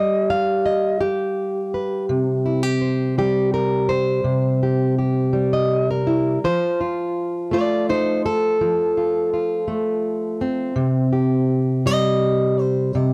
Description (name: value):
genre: acoustic country blues, solo or duo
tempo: 55 BPM (dotted quarters)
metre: 12/8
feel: straight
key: unclear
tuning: A4 = 438 Hz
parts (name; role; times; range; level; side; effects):
- fingerpicked plugged-in steel-string acoustic guitar; solo; 0.0-13.1 s; C3 to F5; -20 LUFS; equal; none
room: light reverb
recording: dry, close 1970s-style studio recording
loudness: -20 LUFS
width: mono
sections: 0.0-2.1 A section; 2.1-13.1 B section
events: steel-string acoustic guitar solo 2.1-13.1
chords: 0.0 G; 2.1 C5; 6.4 F; 10.8 C5